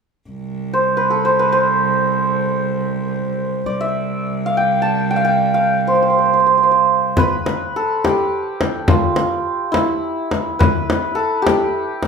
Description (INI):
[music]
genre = Persian modal ensemble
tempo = free time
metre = none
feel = none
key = C dastgah mahur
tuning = A4 = 440 Hz
[part]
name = rich cello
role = drone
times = 0.3-7.2 s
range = C2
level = -22 LUFS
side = right 4 dB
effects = none
[part]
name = santur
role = melody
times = 0.7-12.1 s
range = E4 to A5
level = -16 LUFS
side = right 1 dB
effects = none
[part]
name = frame drum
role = percussion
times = 7.2-12.1 s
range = none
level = -18 LUFS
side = left 2 dB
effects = none
[sound]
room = wet large studio reverb, RT60 0.8 s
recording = band playing live in one room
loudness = -15 LUFS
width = side -5 dB against mid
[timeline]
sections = 0.3-7.2 A section; 7.2-12.1 B section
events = none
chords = none